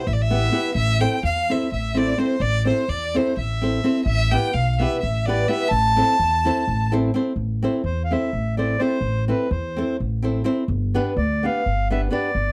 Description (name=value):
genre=balkan folk, Balkan wedding band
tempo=253 BPM (eighths)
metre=7/8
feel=straight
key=A minor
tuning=A4 = 441 Hz
part: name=clear violin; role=melody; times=0.0-6.9 s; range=C5 to A5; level=-26 LUFS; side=equal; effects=none
part: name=accordion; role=second line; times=0.0-12.5 s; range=B4 to A5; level=-30 LUFS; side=equal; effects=none
part: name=flamenco guitar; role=accompaniment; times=0.0-12.3 s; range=B3 to C5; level=-25 LUFS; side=equal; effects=none
part: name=upright bass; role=bass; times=0.1-12.5 s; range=G1 to E2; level=-26 LUFS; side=equal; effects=none
room=little or no reverb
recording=dry, close 1970s-style studio recording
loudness=-22 LUFS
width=mono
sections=0.0-7.4 A section; 7.4-12.5 B section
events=accordion solo 7.4-12.5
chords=0.0 Em/A; 0.7 Am; 4.0 Em/A; 5.7 Am; 10.7 G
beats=0.03 0.27 0.50 | 0.74 0.98 1.21 1.45 1.69 1.92 2.16 | 2.39 2.63 2.87 3.10 3.34 3.58 3.81 | 4.05 4.29 4.52 4.76 5.00 5.23 5.47 | 5.71 5.94 6.18 6.42 6.65 6.89 7.12 | 7.36 7.60 7.84 8.07 8.31 8.55 8.79 | 9.02 9.26 9.50 9.73 9.97 10.21 10.45 | 10.68 10.92 11.16 11.39 11.63 11.87 12.11 | 12.35